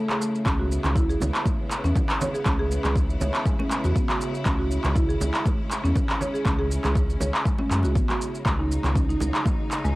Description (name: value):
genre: afro house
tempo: 120 BPM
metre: 4/4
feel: swing 54% on 16ths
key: C# minor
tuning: A4 = 440 Hz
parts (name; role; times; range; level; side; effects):
- clear studio string section; sustained chords; 0.0-10.0 s; C#3 to E4; -34 LUFS; left 1 dB; sidechain pumping, cassette tape
- buzzing marimba with medium hard mallets; arpeggios; 0.0-9.9 s; G#3 to C#5; -29 LUFS; right 1 dB; sidechain pumping, cassette tape, tape echo
- electronic handclaps and shaker; drums; 0.1-9.9 s; none; -28 LUFS; equal; overdrive
- congas; percussion; 0.1-9.9 s; none; -35 LUFS; right 2 dB; none
- round analog bass; bass; 0.5-9.9 s; G#1 to F#2; -25 LUFS; equal; sidechain pumping
- electronic kick drum; drums; 0.5-9.6 s; none; -25 LUFS; equal; overdrive
room: little or no reverb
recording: home recording on cassette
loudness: -21 LUFS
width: side -19 dB against mid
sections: 0.0-10.0 A section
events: break 0.0-0.5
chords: 0.5 C#m7; 8.5 G#7sus4/C#